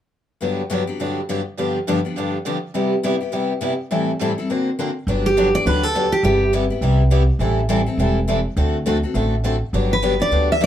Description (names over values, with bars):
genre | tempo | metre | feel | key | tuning
acoustic string swing (jazz manouche) | 206 BPM | 4/4 | swing 60% on 8ths | G major | A4 = 440 Hz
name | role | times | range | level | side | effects
picked steel-string acoustic guitar | accompaniment | 0.4-10.7 s | G2 to C5 | -22 LUFS | left 4 dB | none
picked swing-style acoustic guitar | accompaniment | 0.4-10.7 s | G2 to C5 | -26 LUFS | right 4 dB | none
upright bass | bass | 5.1-10.7 s | E1 to D2 | -20 LUFS | right 1 dB | none
picked steel-string acoustic guitar | melody | 5.3-6.5, 9.9-10.7 s | G4 to E5 | -18 LUFS | right 1 dB | none
room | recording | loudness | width
moderate small room reverb, RT60 0.5 s | band playing live in one room | -17 LUFS | side -10 dB against mid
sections
0.4-5.1 A section; 5.1-10.7 B section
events
none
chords
0.4 Gmaj7; 1.6 G7; 2.8 Cmaj7; 3.9 Am7; 4.5 Daug7; 5.1 Gmaj7; 6.2 Cmaj7/G; 7.4 Am7; 8.6 D7; 9.7 Gmaj7